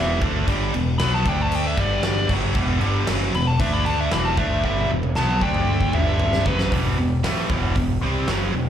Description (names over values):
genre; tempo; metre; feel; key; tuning
hard rock; 116 BPM; 4/4; straight; E minor; A4 = 444 Hz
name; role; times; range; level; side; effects
dark smooth lead guitar; melody; 0.0-6.7 s; B4 to B5; -25 LUFS; left 2 dB; overdrive, slapback echo
high-gain distorted guitar; riff; 0.0-8.7 s; E2 to D4; -23 LUFS; right 1 dB; distortion, slapback echo
growling picked electric bass; bass; 0.0-8.7 s; E1 to D2; -24 LUFS; equal; overdrive
huge arena drum kit; drums; 0.2-8.4 s; crash cymbal, hi-hat, kick drum, snare drum, toms; -24 LUFS; equal; none
room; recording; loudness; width
little or no reverb; live gig heard through the venue's PA, club reverb; -19 LUFS; side -9 dB against mid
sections
0.0-6.7 A section; 6.7-8.7 B section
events
lead electric guitar solo 0.0-6.7; drum fill 4.6-6.7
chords
0.0 Em; 1.3 D5; 1.8 G5; 2.3 Em; 3.6 D5; 4.1 Em; 5.4 D5; 5.9 G5; 6.5 F#sus4; 6.7 Em